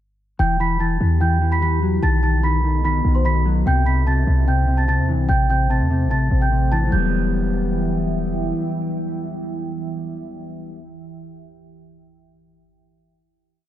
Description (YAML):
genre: hip hop, trap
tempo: 147 BPM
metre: 4/4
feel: half-time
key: E harmonic minor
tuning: A4 = 440 Hz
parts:
  - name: celesta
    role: melody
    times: 0.4-8.1 s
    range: C5 to B6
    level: -24 LUFS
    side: right 2 dB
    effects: none
  - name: mellow electric guitar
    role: accompaniment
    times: 0.4-10.8 s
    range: C3 to B3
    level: -23 LUFS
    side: left 2 dB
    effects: lush chorus
  - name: deep dark ambient pad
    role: sustained chords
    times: 1.0-10.8 s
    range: E3 to G5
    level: -28 LUFS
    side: right 1 dB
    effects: chorus, built-in reverb
  - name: clean 808-style bass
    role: bass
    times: 0.4-8.5 s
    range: E1 to E2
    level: -19 LUFS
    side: equal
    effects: none
room: light reverb, digital ambience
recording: none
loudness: -17 LUFS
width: side -12 dB against mid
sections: 0.4-6.9 breakdown; 6.9-10.2 final chord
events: none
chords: 0.4 Emadd9; 2.0 B7; 3.7 C; 5.3 Am7; 6.9 Emadd9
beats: | 0.39 0.80 1.21 1.62 | 2.03 2.43 2.84 3.25 | 3.66 4.07 4.47 4.88 | 5.29 5.70 6.11 6.52 | 6.92 7.33 7.74 8.15 | 8.56 8.96 9.37 9.78